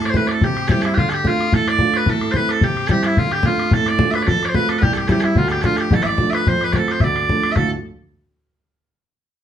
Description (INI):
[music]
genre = celtic folk, Celtic reel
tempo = 219 BPM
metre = 4/4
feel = swing 54% on 8ths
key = D dorian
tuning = A4 = 440 Hz
[part]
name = loud bright bagpipes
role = melody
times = 0.0-7.7 s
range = E4 to E5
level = -19 LUFS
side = equal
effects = none
[part]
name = warm upright piano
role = accompaniment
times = 0.0-7.7 s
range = A1 to F4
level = -21 LUFS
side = right 2 dB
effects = none
[part]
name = bodhran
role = percussion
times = 0.0-7.7 s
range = none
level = -20 LUFS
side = left 2 dB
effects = none
[sound]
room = moderate studio reverb, RT60 0.6 s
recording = band playing live in one room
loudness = -15 LUFS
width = side -9 dB against mid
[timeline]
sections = 0.0-7.6 A section; 7.6-8.7 B section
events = none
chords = 0.4 C; 1.0 Dm; 2.1 Am; 2.6 C; 3.2 Dm; 4.3 F; 4.8 C; 5.4 Dm; 6.5 F; 7.0 Dm